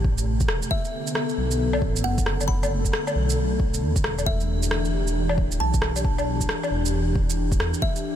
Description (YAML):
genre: future garage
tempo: 135 BPM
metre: 4/4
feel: swing 63% on 16ths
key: E minor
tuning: A4 = 440 Hz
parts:
  - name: airy breathy pad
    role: sustained chords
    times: 0.0-8.2 s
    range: C3 to A4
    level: -28 LUFS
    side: left 1 dB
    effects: chorus, sidechain pumping
  - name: dark detuned saw bass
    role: bass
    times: 0.0-7.7 s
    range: D1 to E2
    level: -25 LUFS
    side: equal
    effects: tube saturation, sidechain pumping
  - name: electronic kick drum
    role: drums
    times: 0.0-7.9 s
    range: none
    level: -25 LUFS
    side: equal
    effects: none
  - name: electronic shaker, rim click and woodblock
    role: drums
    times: 0.2-8.0 s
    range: none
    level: -28 LUFS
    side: equal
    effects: none
  - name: buzzing kalimba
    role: melody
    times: 0.7-8.2 s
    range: E5 to B5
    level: -33 LUFS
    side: right 1 dB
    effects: tape echo
room: light reverb, digital ambience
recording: none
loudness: -21 LUFS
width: side -10 dB against mid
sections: 0.0-8.2 A section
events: none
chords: 0.0 Am7; 0.7 Bm7; 4.3 Em7